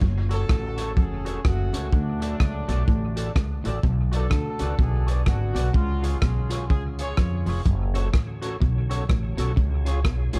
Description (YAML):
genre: ska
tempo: 126 BPM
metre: 4/4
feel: swing 60% on 8ths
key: F# harmonic minor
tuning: A4 = 440 Hz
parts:
  - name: electric guitar at the edge of break-up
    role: riff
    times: 0.0-10.4 s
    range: E#2 to E#3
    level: -36 LUFS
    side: equal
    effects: none
  - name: upright bass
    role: bass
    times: 0.0-10.4 s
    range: E#1 to E#2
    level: -28 LUFS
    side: equal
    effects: none
  - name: crunchy breakbeat drum kit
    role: drums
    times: 0.0-10.4 s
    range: hi-hat, kick drum, rim click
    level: -27 LUFS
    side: equal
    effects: none
  - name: warm horn section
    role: melody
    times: 0.3-7.6 s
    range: F#3 to C#5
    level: -36 LUFS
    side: equal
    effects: dub echo
  - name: clean electric guitar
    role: accompaniment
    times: 0.3-10.4 s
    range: E#4 to D5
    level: -38 LUFS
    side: equal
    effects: analog chorus
  - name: percussive tonewheel organ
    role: stabs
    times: 7.9-10.4 s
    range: C#4 to C#5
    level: -41 LUFS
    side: equal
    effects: chorus vibrato, fast rotary speaker, dub echo
room: little or no reverb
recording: dark, warm production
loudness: -24 LUFS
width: mono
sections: 0.0-10.4 A section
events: none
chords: 0.0 F#m; 1.9 D; 3.8 Bm; 5.7 C#; 7.7 F#m; 9.6 C#